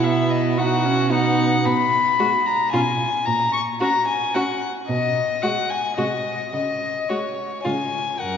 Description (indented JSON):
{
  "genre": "quick classical-period movement for string quartet",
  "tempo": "111 BPM",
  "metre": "3/4",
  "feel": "straight",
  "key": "F# major",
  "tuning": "A4 = 442 Hz",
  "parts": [
    { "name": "warm violin", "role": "melody", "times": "0.0-8.4 s", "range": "C#5 to C#6", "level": "-21 LUFS", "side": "left 4 dB", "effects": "none" },
    { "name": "warm violin", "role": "second line", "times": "0.0-8.4 s", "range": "D#4 to A#4", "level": "-26 LUFS", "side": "equal", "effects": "none" },
    { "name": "warm viola", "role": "accompaniment", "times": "0.0-7.7 s", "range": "G#3 to D#4", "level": "-28 LUFS", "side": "right 2 dB", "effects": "none" },
    { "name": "rich cello", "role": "bass", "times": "0.0-8.4 s", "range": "F#2 to C#3", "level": "-26 LUFS", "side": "right 6 dB", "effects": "none" }
  ],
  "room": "wet church reverb, RT60 3.4 s",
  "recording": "recorded in a church or concert hall, nothing above 7.5 kHz",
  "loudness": "-19 LUFS",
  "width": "side -7 dB against mid",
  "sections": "0.0-8.2 A section",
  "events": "none",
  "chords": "0.0 B; 1.7 N.C.; 2.7 C#7(no3)/B; 3.3 F#/A#; 4.9 G#m7/B; 6.0 G#/B#; 6.5 N.C."
}